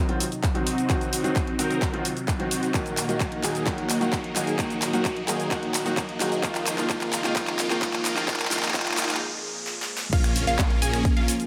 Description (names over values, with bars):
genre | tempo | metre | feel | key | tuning
EDM, festival progressive house | 130 BPM | 4/4 | straight | Bb minor | A4 = 439 Hz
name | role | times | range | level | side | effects
clear baby grand piano | accompaniment | 0.0-9.2 s | Eb3 to Gb4 | -33 LUFS | equal | sidechain pumping, dub echo
lush unison pad | sustained chords | 0.0-11.5 s | Eb2 to Eb4 | -38 LUFS | equal | chorus, sidechain pumping
big supersaw lead | riff | 0.0-11.3 s | Bb3 to Bb4 | -31 LUFS | equal | phaser, sidechain pumping, low-pass filter, dub echo
riser | sound effects | 2.0-10.1 s | none | -39 LUFS | equal | none
pop drum kit | drums | 0.1-11.5 s | cabasa, crash cymbal, finger snaps, handclaps, hi-hat, snare drum | -31 LUFS | equal | high-pass filter on snare, high-pass filter on hats, high-pass filter on perc, high-pass filter on cymbals, high-pass filter on room
electronic kick drum | drums | 0.4-11.1 s | none | -29 LUFS | equal | none
unison pluck | arpeggios | 10.1-11.3 s | F5 to Ab5 | -33 LUFS | equal | sidechain pumping, dub echo
detuned saw bass | bass | 10.1-11.3 s | Bb1 | -31 LUFS | equal | chorus, sidechain pumping
room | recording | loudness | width
moderate digital room reverb, RT60 0.9 s, digital ambience | high-pass filter | -25 LUFS | mono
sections
0.0-10.1 A section; 10.1-11.5 B section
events
build-up 0.0-10.1; drum fill 0.0-9.2, 9.7-10.1; filter sweep on supersaw synth 0.0-10.1; filter sweep on analog synth pad 0.0-10.1; filter sweep 0.0-10.1; riser 2.0-10.1; break 9.2-10.1; drop 10.1-11.5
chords
0.0 Cdim; 2.7 Ebm; 6.4 Fm; 10.1 Bbm